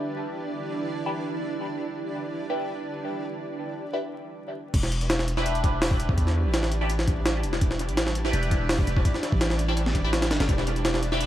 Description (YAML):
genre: drum and bass, jungle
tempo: 167 BPM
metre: 4/4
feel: straight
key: E minor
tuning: A4 = 439 Hz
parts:
  - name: granular cloud pad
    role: sustained chords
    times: 0.0-11.3 s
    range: D4 to D5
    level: -32 LUFS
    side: right 2 dB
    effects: built-in reverb
  - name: band-passed chord stab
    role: stabs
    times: 0.0-11.3 s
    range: D4 to B4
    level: -33 LUFS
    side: equal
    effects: phaser, wide subtle chorus, cassette tape, dub echo
  - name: long sustained 808-style bass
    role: bass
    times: 4.7-11.3 s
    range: E1 to E2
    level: -26 LUFS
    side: equal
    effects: none
  - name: jungle sampler-style drum kit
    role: drums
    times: 4.7-11.3 s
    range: crash cymbal, hi-hat, kick drum, snare drum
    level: -25 LUFS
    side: equal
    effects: dub echo
room: light reverb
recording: echo-heavy mix, vinyl crackle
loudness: -24 LUFS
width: side -12 dB against mid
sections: 0.0-4.7 A section; 4.7-11.3 B section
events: break 3.3-4.7; drop 4.7-11.3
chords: 0.0 Em7